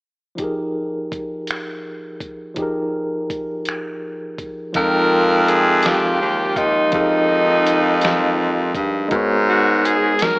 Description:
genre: slow six-eight R&B.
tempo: 55 BPM (dotted quarters).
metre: 6/8.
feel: straight.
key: F minor.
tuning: A4 = 440 Hz.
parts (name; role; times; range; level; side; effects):
bright tine electric piano; accompaniment; 0.4-10.4 s; F3 to G5; -23 LUFS; equal; slow stereo tremolo.
dusty soul sampler-style drum kit; drums; 0.4-10.4 s; finger snaps, hi-hat, kick drum, snare drum; -26 LUFS; equal; none.
breathy tenor saxophone; melody; 4.8-10.4 s; Eb4 to Bb4; -18 LUFS; equal; none.
mellow horn section; stabs; 4.8-10.4 s; C3 to Gb4; -27 LUFS; equal; none.
clear baritone saxophone; bass; 4.8-10.3 s; Eb2 to Ab2; -18 LUFS; equal; none.
room: wet plate reverb, RT60 2.6 s.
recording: dreamy mix soaked in reverb, AM radio sound.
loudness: -16 LUFS.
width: side -31 dB against mid.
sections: 0.4-4.8 A section; 4.8-10.4 B section.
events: none.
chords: 0.4 Fm11; 9.1 Abm11.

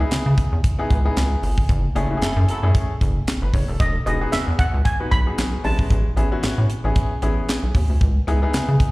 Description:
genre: early-eighties boogie funk.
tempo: 114 BPM.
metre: 4/4.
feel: swing 56% on 16ths.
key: F# dorian.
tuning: A4 = 440 Hz.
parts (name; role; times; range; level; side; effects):
clear baby grand piano; accompaniment; 0.0-8.9 s; G#3 to C#5; -26 LUFS; left 2 dB; plate reverb, slapback echo.
rubbery square bass; bass; 0.0-8.8 s; E1 to C#3; -20 LUFS; equal; none.
tight funk drum kit; drums; 0.1-8.9 s; handclaps, hi-hat, kick drum, snare drum; -21 LUFS; equal; none.
mellow horn section; second line; 2.2-2.7 s; F#3 to A4; -31 LUFS; right 2 dB; plate reverb, slapback echo.
steel pan; melody; 3.8-6.7 s; D#5 to B5; -26 LUFS; right 2 dB; plate reverb, slapback echo, analog delay.
room: little or no reverb.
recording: live gig heard through the venue's PA, recital hall reverb.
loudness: -18 LUFS.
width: side -21 dB against mid.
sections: 0.0-8.9 A section.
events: band accent 1.7-3.8.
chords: 0.0 C#m7; 1.7 F#m7; 3.8 Emaj9; 5.6 Amaj7; 8.0 C#m7.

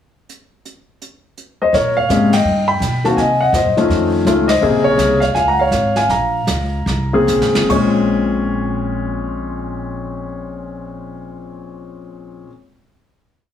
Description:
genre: jazz piano trio.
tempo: 141-166 BPM.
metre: 4/4.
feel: swing 63% on 8ths.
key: Bb minor.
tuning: A4 = 442 Hz.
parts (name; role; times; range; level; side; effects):
jazz brush drum kit; drums; 0.3-8.0 s; brushed snare drum, crash cymbal, hi-hat, kick drum, ride cymbal, snare drum; -25 LUFS; right 2 dB; none.
warm grand piano; melody; 1.6-12.5 s; Bb2 to Db6; -16 LUFS; left 2 dB; none.
upright bass; bass; 1.7-12.4 s; F1 to C3; -22 LUFS; equal; none.
room: moderate studio reverb, RT60 0.7 s.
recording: heavily compressed radio sound.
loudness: -14 LUFS.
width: side -9 dB against mid.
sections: 0.3-1.7 pickup bar; 1.7-7.7 A section; 7.7-11.1 final chord.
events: band accent 2.3, 4.4; slowing down 4.6-7.7; drum fill 7.3-7.7.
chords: 0.3 N.C.; 1.7 Bbm9; 2.5 Gaug; 3.2 Cm7b5; 3.9 F7b13; 4.6 Bbm9.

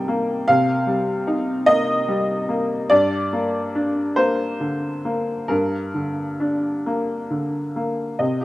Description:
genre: neoclassical minimalist piano.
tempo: 44-50 BPM (dotted quarters).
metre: 6/8.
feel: rubato.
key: G minor.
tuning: A4 = 437 Hz.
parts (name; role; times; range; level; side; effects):
clear upright piano; solo; 0.0-8.4 s; G2 to A5; -19 LUFS; equal; slapback echo.
room: little or no reverb.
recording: recorded outdoors, with no room sound.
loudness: -19 LUFS.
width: side -17 dB against mid.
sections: 0.0-8.2 A section.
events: none.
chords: 0.0 Cm7; 2.9 Gm.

